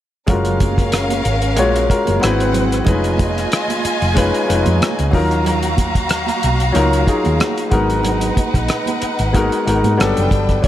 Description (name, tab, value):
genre	lush 1970s-style soul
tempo	93 BPM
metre	4/4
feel	swing 54% on 16ths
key	F# major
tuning	A4 = 443 Hz
part	warm studio violin section	second line	0.3-10.7 s	B#3 to A#5	-22 LUFS	equal	none
part	warm concert grand piano	accompaniment	0.3-10.7 s	F#3 to C#5	-18 LUFS	left 2 dB	none
part	hollow-body short-scale fingered electric bass	bass	0.3-10.7 s	E#1 to G#2	-19 LUFS	equal	none
part	cloth-damped thuddy drum kit	drums	0.3-10.7 s	hi-hat, kick drum, rim click	-19 LUFS	equal	none
part	congas	percussion	0.3-10.7 s	none	-26 LUFS	right 8 dB	none
room	light reverb, small room ambience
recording	none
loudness	-14 LUFS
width	side -12 dB against mid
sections	0.3-10.6 A section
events	none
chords	0.3 F#maj9; 2.2 G#7alt; 2.9 C#9/E#; 5.1 D#m9; 7.7 G#m9; 10.0 Gmaj9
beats	| 0.28 0.93 1.57 2.22 | 2.87 3.51 4.16 4.81 | 5.46 6.10 6.75 7.40 | 8.04 8.69 9.34 9.99 | 10.64